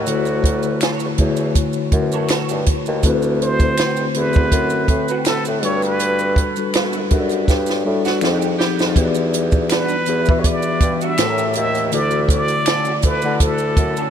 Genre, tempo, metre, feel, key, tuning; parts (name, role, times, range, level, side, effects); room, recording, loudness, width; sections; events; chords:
R&B, neo-soul; 81 BPM; 4/4; swing 54% on 16ths; A4 = 441 Hz
trumpet with plunger mute; melody; 0.0-14.1 s; F#4 to E5; -23 LUFS; right 1 dB; tape echo
mellow tine electric piano; accompaniment; 0.0-14.1 s; A2 to E5; -21 LUFS; left 4 dB; medium stereo tremolo
warm bassoon; bass; 0.0-14.0 s; D2 to E3; -22 LUFS; right 1 dB
compact cocktail drum kit; drums; 0.1-14.0 s; hi-hat, kick drum, snare drum; -20 LUFS; right 1 dB
maracas and finger snaps; percussion; 0.1-14.1 s; -34 LUFS; right 3 dB
electric guitar through a small old amp; second line; 0.8-14.1 s; G3 to C#5; -29 LUFS; right 6 dB; ensemble chorus, tape echo
edgy saxophone section; stabs; 8.0-9.1 s; B3 to G4; -33 LUFS; right 5 dB
moderate huge ambient reverb, RT60 7.2 s; dreamy mix soaked in reverb; -15 LUFS; side -8 dB against mid
0.0-9.0 A section; 9.0-14.1 B section
band accent 6.0-9.0; drum fill 7.5-9.0
0.1 Dmaj7; 3.0 D13; 5.6 Gmaj9; 8.2 Fm9; 9.0 Em9; 11.2 A7b9; 11.9 D